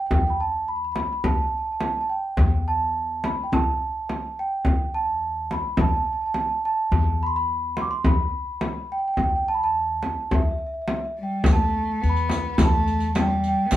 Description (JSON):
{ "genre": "Arabic maqam ensemble", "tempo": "106 BPM", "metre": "4/4", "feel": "straight", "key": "E maqam bayati", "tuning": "A4 = 438 Hz", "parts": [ { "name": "large celesta", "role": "melody", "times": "0.0-13.7 s", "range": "E5 to D6", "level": "-25 LUFS", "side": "right 2 dB", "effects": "none" }, { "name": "upright bass", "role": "bass", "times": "0.1-13.8 s", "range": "E2", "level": "-26 LUFS", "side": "left 1 dB", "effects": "none" }, { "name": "frame drum", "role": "percussion", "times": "0.1-13.8 s", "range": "none", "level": "-24 LUFS", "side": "equal", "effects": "none" }, { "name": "dark cello", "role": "second line", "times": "11.2-13.8 s", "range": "G3 to B3", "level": "-27 LUFS", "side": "left 2 dB", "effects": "none" }, { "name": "riq", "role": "percussion", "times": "11.5-13.8 s", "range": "none", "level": "-33 LUFS", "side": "right 2 dB", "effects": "none" } ], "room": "wet studio reverb, RT60 0.6 s", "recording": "band playing live in one room", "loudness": "-21 LUFS", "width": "side -13 dB against mid", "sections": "0.0-11.5 A section; 11.5-13.8 B section", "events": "none", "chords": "none" }